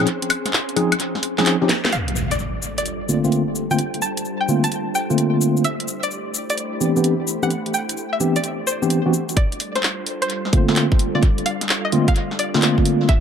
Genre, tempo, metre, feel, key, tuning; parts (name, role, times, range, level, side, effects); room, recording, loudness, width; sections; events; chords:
UK garage, two-step garage; 129 BPM; 4/4; swing 67% on 16ths; A4 = 440 Hz
soft string machine; sustained chords; 0.0-13.2 s; G3 to B5; -29 LUFS; equal; ensemble chorus, sidechain pumping
tine electric piano; stabs; 0.0-13.1 s; D3 to Ab4; -20 LUFS; equal; fast stereo tremolo, low-pass filter, analog delay
garage drum kit; drums; 0.1-13.2 s; cabasa, handclaps, hi-hat, snare drum, woodblock; -23 LUFS; left 1 dB; high-pass filter on hats, high-pass filter on snare, high-pass filter on perc, high-pass filter on room, tape echo
string-like resonator pluck; melody; 1.9-13.2 s; C5 to A5; -26 LUFS; equal; chorus, tape echo
impact; sound effects; 1.9-3.8 s; -27 LUFS; equal
electronic kick drum; drums; 9.4-13.2 s; -17 LUFS; equal
moderate spring reverb, RT60 1.8 s; echo-heavy mix; -18 LUFS; side -8 dB against mid
0.0-1.9 A section; 1.9-9.4 B section; 9.4-13.2 C section
break 0.1-1.9; drum fill 1.7; band accent 1.8; impact 1.9-3.8; filter sweep on string machine 1.9-9.4; build-up 9.4-13.2; filter sweep on tine electric piano 9.4-13.2
0.0 Bbm11 (rootless); 1.9 Gm11; 5.6 Am11; 9.1 Gm11